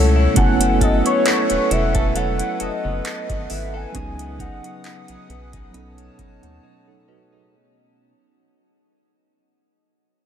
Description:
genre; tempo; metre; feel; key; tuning
contemporary R&B; 67 BPM; 4/4; swing 54% on 16ths; F# dorian; A4 = 440 Hz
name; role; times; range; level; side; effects
mellow tine electric piano; accompaniment; 0.0-7.8 s; F#3 to A5; -25 LUFS; right 5 dB; medium stereo tremolo
hollow soft pad; sustained chords; 0.0-7.5 s; A4 to D#6; -28 LUFS; equal; chorus
direct-recorded clean electric guitar; arpeggios; 0.0-8.1 s; B2 to A4; -28 LUFS; left 6 dB; lush chorus, diffuse ambient delay
rubbery square bass; bass; 0.0-6.6 s; E1 to D#2; -22 LUFS; equal; none
glassy synth bell; texture; 0.0-7.6 s; A4 to F#6; -38 LUFS; right 2 dB; none
warm velvety synth lead; melody; 0.4-5.3 s; C#5 to G#5; -24 LUFS; left 1 dB; chorus, diffuse ambient delay
booming analog drum machine; drums; 0.4-6.6 s; handclaps, hi-hat, kick drum; -23 LUFS; equal; overdrive
room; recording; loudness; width
moderate huge ambient reverb, RT60 8.4 s; dreamy mix soaked in reverb; -17 LUFS; side -9 dB against mid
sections
0.0-7.5 A section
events
fade-out 0.0-7.5; tine electric piano fill 5.7-7.5; break 6.6-7.5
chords
0.4 F#m11; 3.9 C#9sus4

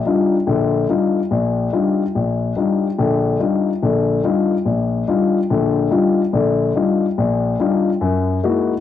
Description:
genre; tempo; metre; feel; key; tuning
jazz; 143 BPM; 4/4; swing 67% on 8ths; Eb major; A4 = 440 Hz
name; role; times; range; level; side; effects
dark baby grand piano; solo; 0.1-8.7 s; Bb1 to Gb4; -16 LUFS; left 4 dB; cassette tape
room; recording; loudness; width
moderate spring reverb, RT60 1.6 s, small room reverb; home recording on cassette; -16 LUFS; side -10 dB against mid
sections
0.0-8.8 A section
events
none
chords
0.0 Ebmaj9; 8.0 Gb13

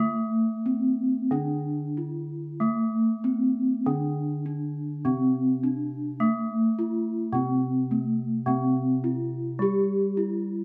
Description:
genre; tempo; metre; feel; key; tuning
gamelan; 90-106 BPM; 4/4; straight; C slendro; A4 = 436 Hz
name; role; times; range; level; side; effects
gamelan-type bronze metallophone; melody; 0.0-10.6 s; Bb3-45c to G4+25c; -28 LUFS; equal; none
gamelan-type bronze metallophone; accompaniment; 0.0-10.6 s; C3 to Bb3-45c; -32 LUFS; equal; none
room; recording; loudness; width
wet stone room reverb, RT60 1.0 s; band playing live in one room; -26 LUFS; mono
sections
0.0-6.2 A section; 6.2-10.6 B section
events
none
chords
none

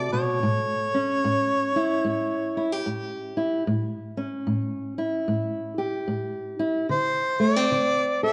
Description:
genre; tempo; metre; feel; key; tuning
acoustic country blues, solo or duo; 74 BPM; 4/4; swing 62% on 8ths; A mixolydian; A4 = 436 Hz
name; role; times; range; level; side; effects
warm harmonica; melody; 0.0-8.3 s; C5 to E5; -27 LUFS; equal; none
fingerpicked steel-string acoustic guitar; accompaniment; 0.0-8.3 s; A2 to A4; -28 LUFS; equal; none
room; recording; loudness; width
wet recital hall reverb, RT60 1.6 s; worn, warbling old tape, cassette tape, warbly pitch drift, nothing above 10.9 kHz; -26 LUFS; mono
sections
0.0-8.3 A section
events
none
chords
0.4 A7; 6.9 D5

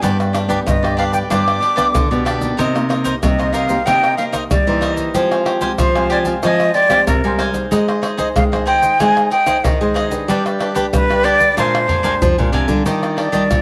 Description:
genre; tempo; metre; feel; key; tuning
samba and choro; 94 BPM; 4/4; straight; C minor; A4 = 440 Hz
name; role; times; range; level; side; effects
cavaquinho; accompaniment; 0.0-13.4 s; D4 to Ab5; -25 LUFS; equal; none
nylon-string guitar; accompaniment; 0.0-13.6 s; Bb2 to C5; -26 LUFS; equal; none
nylon-string guitar; bass; 0.0-13.6 s; G2 to Ab3; -22 LUFS; equal; none
egg shaker, surdo, pandeiro and tamborim; percussion; 0.0-13.6 s; none; -23 LUFS; equal; none
breathy concert flute; melody; 0.7-13.6 s; Bb4 to D6; -19 LUFS; equal; slapback echo
room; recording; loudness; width
light reverb, small room reverb; none; -16 LUFS; mono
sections
0.0-12.9 A section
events
drum fill 11.6-12.9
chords
0.0 G; 2.6 Cm7; 5.2 Fmadd9; 7.7 Ab; 10.3 G; 11.6 Bb13; 12.9 Ebmaj9

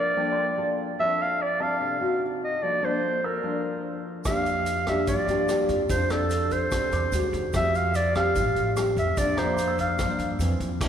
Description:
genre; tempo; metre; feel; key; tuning
bossa nova; 146 BPM; 4/4; straight; F major; A4 = 440 Hz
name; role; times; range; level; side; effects
growling clarinet; melody; 0.0-10.4 s; A4 to F5; -26 LUFS; right 1 dB; none
nylon-string guitar; accompaniment; 0.0-10.9 s; F2 to A4; -28 LUFS; left 2 dB; none
warm concert grand piano; accompaniment; 0.2-4.3, 6.9-10.4 s; G5 to E6; -38 LUFS; right 3 dB; none
tube shaker; percussion; 4.2-10.9 s; none; -44 LUFS; right 7 dB; none
upright bass; bass; 4.3-10.9 s; A1 to G2; -29 LUFS; right 1 dB; none
vintage drum kit; drums; 4.3-10.9 s; crash cymbal, hi-hat, kick drum, rim click; -33 LUFS; equal; none
room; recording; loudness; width
wet church reverb, RT60 3.2 s; recorded in a church or concert hall; -23 LUFS; side -8 dB against mid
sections
0.0-10.8 A section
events
none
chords
0.0 Gm9/F; 1.0 F6; 2.2 Cdim; 2.6 Bbmaj9#11/F; 4.3 Bb6/F; 5.9 F6; 7.1 Ebm7; 7.5 Fmaj9; 9.2 C9sus4/F; 10.4 Fmaj7

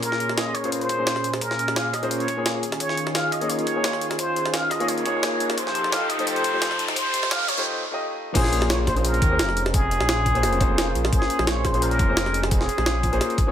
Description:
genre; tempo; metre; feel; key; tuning
liquid drum and bass; 173 BPM; 4/4; straight; Bb dorian; A4 = 440 Hz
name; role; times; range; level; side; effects
trumpet with plunger mute; melody; 0.0-13.5 s; Ab4 to F5; -26 LUFS; equal; digital delay
warm grand piano; accompaniment; 0.0-13.5 s; A3 to Eb5; -28 LUFS; left 2 dB; vintage 12-bit sampler grit
warm analog pad; sustained chords; 0.0-13.5 s; Bb2 to C6; -30 LUFS; right 2 dB; chorus
electronic kick drum; drums; 0.0-13.5 s; none; -24 LUFS; equal; high-pass filter on kick, high-pass filter on room
jungle sampler-style drum kit; drums; 0.0-13.5 s; crash cymbal, hi-hat, snare drum; -26 LUFS; equal; high-pass filter on hats, high-pass filter on snare, high-pass filter on cymbals
riser; sound effects; 4.3-7.7 s; none; -30 LUFS; right 1 dB; none
swelling detuned saw bass; bass; 8.4-13.2 s; F1 to Eb2; -24 LUFS; equal; none
room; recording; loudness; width
moderate digital room reverb, RT60 1.1 s; high-pass filter; -20 LUFS; side -10 dB against mid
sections
0.0-8.4 A section; 8.4-13.5 B section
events
build-up 0.0-8.4; filter sweep 0.0-8.4; riser 4.3-7.7; break 7.7-8.4; drop 8.4-13.5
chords
0.0 Bbm7; 2.6 Eb7sus4; 5.6 F7; 8.4 Bbm7

